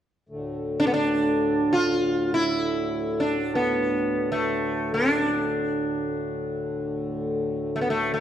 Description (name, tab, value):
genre	indian classical, Hindustani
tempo	free time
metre	none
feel	none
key	D raga shivaranjani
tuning	A4 = 441 Hz
part	pedal harmonium	drone	0.3-8.2 s	D2 to A2	-28 LUFS	left 2 dB	none
part	sitar	melody	0.8-8.2 s	A3 to F4	-23 LUFS	right 1 dB	none
room	wet recital hall reverb, RT60 1.6 s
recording	dark, warm production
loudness	-22 LUFS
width	side -10 dB against mid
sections	0.3-8.2 A section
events	none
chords	none